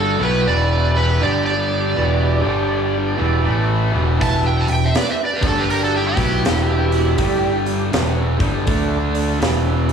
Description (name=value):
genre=blues rock power trio and southern rock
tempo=81 BPM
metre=4/4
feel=swing 63% on 8ths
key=E minor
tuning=A4 = 437 Hz
part: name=overdriven slide guitar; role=melody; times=0.0-7.6 s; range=G4 to A5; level=-22 LUFS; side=right 2 dB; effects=tape echo
part: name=nasal lead guitar with a parked wah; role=second line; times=0.0-7.6 s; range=E4 to F#5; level=-28 LUFS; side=right 5 dB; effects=overdrive
part: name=overdriven tonewheel organ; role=sustained chords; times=0.0-9.9 s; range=G3 to G5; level=-28 LUFS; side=right 7 dB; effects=slow rotary speaker, chorus vibrato
part: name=distorted electric guitar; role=riff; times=0.0-9.9 s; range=E2 to D4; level=-22 LUFS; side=left 1 dB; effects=overdrive
part: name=growling picked electric bass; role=bass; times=0.0-9.9 s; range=E1 to D2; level=-20 LUFS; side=equal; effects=overdrive
part: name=big rock drum kit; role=drums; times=4.2-9.9 s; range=hi-hat, kick drum, snare drum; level=-23 LUFS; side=equal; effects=none
room=light reverb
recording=small room reverb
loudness=-16 LUFS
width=side -7 dB against mid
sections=0.0-9.9 A section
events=none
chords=0.1 Em; 1.2 G5; 2.0 Em; 2.4 G5; 3.1 Em; 5.3 G5; 6.1 Em; 7.2 G5; 7.9 Em; 8.7 D5; 9.4 Em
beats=0.48 | 1.23 1.98 2.72 3.47 | 4.21 4.96 5.70 6.45 | 7.19 7.93 8.68 9.42